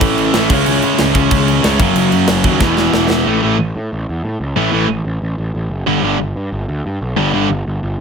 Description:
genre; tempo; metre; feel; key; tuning
punk rock; 184 BPM; 4/4; straight; unclear; A4 = 440 Hz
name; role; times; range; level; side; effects
overdriven electric guitar; riff; 0.0-3.3 s; A2 to G#4; -21 LUFS; right 1 dB; none
sludgy distorted guitar; riff; 0.0-7.5 s; E2 to C#4; -17 LUFS; left 11 dB; overdrive
tight distorted guitar; riff; 0.0-7.5 s; E2 to C#4; -16 LUFS; right 13 dB; distortion
fuzz picked electric bass; bass; 0.0-8.0 s; E1 to C#3; -19 LUFS; equal; overdrive
tight metal drum kit; drums; 0.0-3.2 s; crash cymbal, kick drum, snare drum; -18 LUFS; equal; none
room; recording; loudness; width
light reverb; none; -13 LUFS; side -6 dB against mid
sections
0.0-3.3 A section; 3.3-8.0 B section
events
drum fill 2.6-3.3; half time 3.3-8.0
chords
0.5 C#m; 1.8 F#; 2.6 E; 3.3 A5; 5.9 G5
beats
0.01 0.34 | 0.66 0.99 1.31 1.64 | 1.96 2.29 2.61 2.94 | 3.26 3.59 3.91 4.24 | 4.57 4.89 5.22 5.54 | 5.87 6.20 6.52 6.85 | 7.17 7.50 7.83

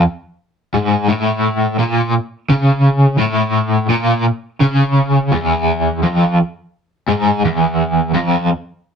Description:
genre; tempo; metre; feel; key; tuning
rock; 57 BPM (dotted quarters); 6/8; straight; unclear; A4 = 438 Hz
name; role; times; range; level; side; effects
crunchy overdriven guitar; solo; 0.0-8.5 s; E2 to C#3; -13 LUFS; equal; tremolo
room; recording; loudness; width
moderate studio reverb, RT60 0.6 s; rough rehearsal-room recording; -13 LUFS; side -6 dB against mid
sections
0.0-5.3 A section; 5.3-9.0 B section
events
none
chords
none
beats
0.03 | 1.09 2.15 | 3.21 4.27 | 5.33 6.39 | 7.45

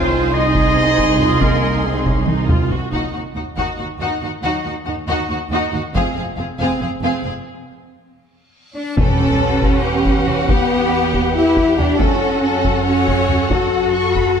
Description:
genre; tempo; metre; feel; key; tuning
cinematic, epic orchestral film score; 278 BPM (eighths); 7/8; straight; Eb dorian, E dorian from 9.0 s; A4 = 437 Hz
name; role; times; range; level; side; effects
warm symphonic violin section; melody; 0.0-14.4 s; F5 to C#6; -26 LUFS; left 4 dB; none
clear symphonic violin section; second line; 0.0-14.4 s; Gb4 to C#5; -25 LUFS; left 2 dB; none
rich symphonic viola section; accompaniment; 0.0-14.4 s; C4 to B4; -24 LUFS; right 2 dB; none
mellow French horn section; sustained chords; 0.0-6.1, 8.7-14.4 s; Gb3 to F#4; -20 LUFS; left 3 dB; none
dark trumpet section; stabs; 0.0-2.3 s; Ab4 to Eb5; -19 LUFS; right 1 dB; none
rich studio cello section; bass; 0.0-14.4 s; Eb2 to F#4; -24 LUFS; right 2 dB; none
warm studio double bass section; bass; 0.0-14.4 s; F1 to F#2; -23 LUFS; right 4 dB; none
taiko ensemble; drums; 0.5-14.4 s; none; -21 LUFS; equal; none
reverse cymbal and sub drop; sound effects; 8.8-10.5 s; none; -28 LUFS; equal; none
timpani; percussion; 9.0-9.6 s; E2; -22 LUFS; equal; none
room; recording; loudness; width
moderate scoring stage reverb, RT60 1.9 s; none; -15 LUFS; side -7 dB against mid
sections
0.0-2.9 A section; 2.9-9.0 B section; 9.0-14.4 A section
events
drum fill 2.3-2.9; break 7.5-9.0; reverse cymbal 8.8; impact 9.0-10.5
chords
0.0 Ab/C; 2.9 Ebm; 5.9 Fm; 7.5 N.C.; 9.0 Emadd9; 12.0 F#m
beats
0.12 0.33 0.55 0.77 0.98 1.20 | 1.41 1.63 1.84 2.06 2.28 2.49 2.71 | 2.92 3.14 3.36 3.57 3.79 4.00 4.22 | 4.43 4.65 4.87 5.08 5.30 5.51 5.73 | 5.95 6.16 6.38 6.59 6.81 7.03 7.24 | 7.46 7.67 7.89 8.10 8.32 8.54 8.75 | 8.97 9.18 9.40 9.62 9.83 10.05 10.26 | 10.48 10.69 10.91 11.13 11.34 11.56 11.77 | 11.99 12.21 12.42 12.64 12.85 13.07 13.28 | 13.50 13.72 13.93 14.15 14.36

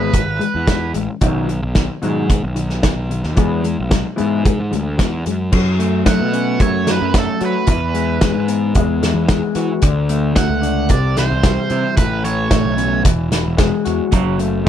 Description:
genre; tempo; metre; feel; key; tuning
indie rock; 111 BPM; 4/4; straight; unclear; A4 = 440 Hz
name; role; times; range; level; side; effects
overdriven electric guitar; melody; 0.0-0.9, 6.1-13.0 s; A4 to F#5; -22 LUFS; right 6 dB; slapback echo
electric guitar through a small old amp; riff; 0.0-14.7 s; A2 to F#4; -20 LUFS; left 3 dB; wide subtle chorus
fuzz picked electric bass; bass; 0.0-14.6 s; E1 to F#3; -21 LUFS; equal; overdrive
loose indie drum kit; drums; 0.1-14.7 s; crash cymbal, hi-hat, kick drum, snare drum; -17 LUFS; equal; none
twangy electric guitar; riff; 14.1-14.7 s; F#2 to F#3; -24 LUFS; right 13 dB; wide subtle chorus, slapback echo
room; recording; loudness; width
light reverb; none; -14 LUFS; side -10 dB against mid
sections
0.0-5.5 A section; 5.5-14.7 B section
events
none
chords
0.0 E; 1.2 B; 3.4 E; 5.5 F#m; 7.7 Eadd9; 9.8 D; 10.9 C; 12.0 A; 13.1 Eadd9; 14.1 F#m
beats
0.13 0.67 | 1.21 1.75 2.29 2.83 | 3.37 3.91 4.45 4.99 | 5.52 6.06 6.60 7.14 | 7.67 8.21 8.75 9.29 | 9.82 10.36 10.90 11.44 | 11.97 12.51 13.05 13.59 | 14.13 14.67

